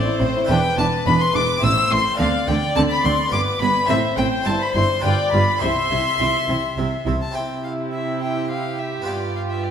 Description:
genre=classical, baroque-style concerto movement with solo episodes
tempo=105 BPM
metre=3/4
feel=straight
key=C major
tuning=A4 = 440 Hz
part: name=warm chamber violin section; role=melody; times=0.0-9.7 s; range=B4 to E6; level=-25 LUFS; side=left 1 dB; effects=none
part: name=warm violin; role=melody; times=0.0-9.7 s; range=C5 to E6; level=-24 LUFS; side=left 2 dB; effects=none
part: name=rich chamber violin section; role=second line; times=0.0-9.7 s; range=G4 to E5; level=-26 LUFS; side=left 3 dB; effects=none
part: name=dark chamber viola section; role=accompaniment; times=0.0-9.7 s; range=B3 to F4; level=-26 LUFS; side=right 3 dB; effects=none
part: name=harpsichord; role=accompaniment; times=0.0-9.7 s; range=E2 to D5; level=-30 LUFS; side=equal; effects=none
part: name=rich chamber cello section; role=bass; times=0.2-9.7 s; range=E2 to D3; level=-26 LUFS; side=right 2 dB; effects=none
part: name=rich chamber double bass section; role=bass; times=0.2-7.1 s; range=E1 to D2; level=-25 LUFS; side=right 2 dB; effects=none
room=wet recital hall reverb, RT60 1.3 s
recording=none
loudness=-17 LUFS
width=side -8 dB against mid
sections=0.0-7.4 A section; 7.4-9.7 B section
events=none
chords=0.5 E5; 1.6 Am; 2.2 Dm7; 3.3 G7; 3.9 Am; 4.5 C/G; 5.0 G7; 5.6 C; 9.1 G7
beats=| 0.49 1.06 1.63 | 2.19 2.76 3.33 | 3.89 4.46 5.04 | 5.62 6.20 6.77 | 7.35 7.92 8.49 | 9.07 9.64

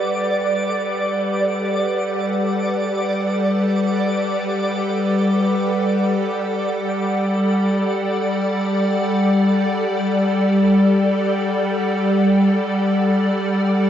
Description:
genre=ambient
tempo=free time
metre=none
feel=none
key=G major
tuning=A4 = 440 Hz
part: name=evolving wavetable pad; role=sustained chords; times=0.0-13.9 s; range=G3 to F#5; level=-20 LUFS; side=equal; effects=ensemble chorus, built-in reverb
part: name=organ-like drone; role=drone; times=0.1-13.9 s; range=G3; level=-21 LUFS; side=left 1 dB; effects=ensemble chorus, built-in reverb
part: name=twinkling granular texture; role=texture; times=0.0-13.9 s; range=D5 to D6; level=-26 LUFS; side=right 2 dB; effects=built-in reverb
room=wet lush hall reverb, RT60 2.5 s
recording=dreamy mix soaked in reverb, nothing above 7.9 kHz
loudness=-17 LUFS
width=side -10 dB against mid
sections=0.0-13.9 A section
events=fade-in on ambient pad 0.0-13.9; fade-in on synth drone 0.0-13.9; fade-out on synth texture 0.0-13.9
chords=0.0 Gmaj7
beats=free time

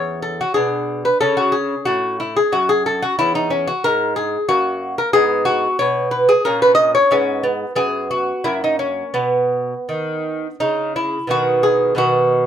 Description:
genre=classical, baroque-style dance for lute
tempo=83-94 BPM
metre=3/4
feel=rubato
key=B major from 3.2 s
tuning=A4 = 442 Hz
part: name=lute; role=solo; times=0.0-12.5 s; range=E2 to D#5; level=-16 LUFS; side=equal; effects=none
room=light reverb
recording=band playing live in one room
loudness=-16 LUFS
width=side -9 dB against mid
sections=0.0-11.3 A section; 11.3-12.5 B section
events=none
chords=0.0 A; 0.6 Bm6; 1.2 A; 3.2 C#m/E; 4.5 F#; 5.1 G#m; 6.4 A#madd11; 7.1 G#m; 7.8 B5/F#; 8.5 F#; 9.2 B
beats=0.56 | 1.22 1.87 2.53 | 3.17 3.82 4.47 | 5.12 5.78 6.44 | 7.10 7.77 8.46 | 9.16 9.89 10.61 | 11.32 11.99

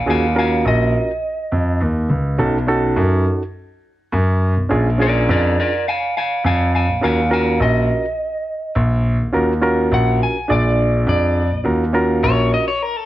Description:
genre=blues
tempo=104 BPM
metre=4/4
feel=straight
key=Eb minor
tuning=A4 = 445 Hz
part: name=electric guitar through a small old amp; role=melody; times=0.0-13.1 s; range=A4 to Ab5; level=-20 LUFS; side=equal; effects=none
part: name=reed electric piano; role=accompaniment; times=0.1-12.7 s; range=Db4 to D5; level=-19 LUFS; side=right 1 dB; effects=none
part: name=dark concert grand piano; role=bass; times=0.1-12.5 s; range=Bb1 to F#2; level=-17 LUFS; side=equal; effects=none
room=light reverb, small room ambience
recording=none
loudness=-15 LUFS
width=side -15 dB against mid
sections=0.0-11.6 A section; 11.6-13.1 B section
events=clean electric guitar solo 11.6-13.1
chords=0.0 Ebm9; 2.4 B7; 4.7 Bb7#9; 7.0 Ebm9; 10.5 Bb7; 11.6 Ebm9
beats=| 0.07 0.65 1.23 1.81 | 2.39 2.97 3.54 4.12 | 4.70 5.28 5.86 6.44 | 7.02 7.60 8.17 8.75 | 9.33 9.91 10.49 11.07 | 11.65 12.23 12.80

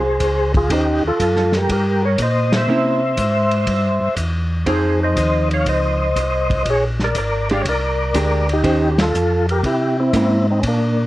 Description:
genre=soul jazz organ trio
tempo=121 BPM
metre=4/4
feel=swing 69% on 8ths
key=Eb mixolydian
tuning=A4 = 440 Hz
part: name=percussive tonewheel organ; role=melody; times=0.0-11.1 s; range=Bb3 to F5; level=-18 LUFS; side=equal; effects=slow rotary speaker, chorus vibrato
part: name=hollow-body jazz guitar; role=accompaniment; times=0.0-10.4 s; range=Eb3 to C5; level=-21 LUFS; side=right 2 dB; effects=none
part: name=mellow tonewheel organ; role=bass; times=0.0-11.1 s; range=Ab1 to C3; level=-20 LUFS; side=equal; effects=chorus vibrato, slow rotary speaker
part: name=warm soul drum kit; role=drums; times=0.2-10.8 s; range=hi-hat, kick drum, ride cymbal, snare drum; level=-25 LUFS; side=equal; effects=none
room=moderate studio reverb, RT60 0.5 s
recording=worn, warbling old tape, cassette tape, warbly pitch drift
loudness=-15 LUFS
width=side -16 dB against mid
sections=0.0-11.1 A section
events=band accent 2.4, 8.9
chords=0.0 Ab; 0.7 Eb13; 2.7 C7b9; 4.7 Fm7; 6.7 Bb13; 8.6 Eb13; 9.6 C7b9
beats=0.20 | 0.70 1.20 1.69 2.19 | 2.69 3.18 3.68 4.18 | 4.67 5.17 5.67 6.16 | 6.66 7.16 7.65 8.15 | 8.65 9.14 9.64 10.14 | 10.63

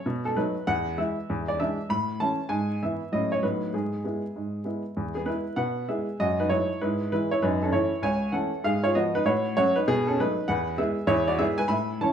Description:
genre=jazz, stride piano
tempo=196 BPM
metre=4/4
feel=swing 63% on 8ths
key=E major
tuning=A4 = 436 Hz
part: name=clear upright piano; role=solo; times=0.0-12.1 s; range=C#2 to B5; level=-24 LUFS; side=equal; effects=none
room=moderate large studio reverb, RT60 0.9 s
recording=band playing live in one room, vinyl crackle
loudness=-24 LUFS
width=side -8 dB against mid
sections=0.0-5.0 A section; 5.0-12.1 A section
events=none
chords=0.1 B7; 0.7 E; 1.3 E7; 1.9 A; 2.5 E/G#; 3.1 F#m/A; 3.4 B7/A; 3.7 E/G#; 5.0 E; 6.2 D#dim/F#; 6.8 E/G#; 7.4 F#m7; 8.6 Fdim/Ab; 9.2 F#m/A; 9.9 B7; 10.5 E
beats=| 0.05 0.36 0.67 0.97 | 1.28 1.58 1.89 2.20 | 2.50 2.81 3.12 3.42 | 3.73 4.04 4.34 4.65 | 4.96 5.27 5.57 5.88 | 6.18 6.49 6.80 7.11 | 7.41 7.72 8.03 8.33 | 8.64 8.94 9.25 9.56 | 9.86 10.17 10.47 10.78 | 11.09 11.39 11.70 12.01

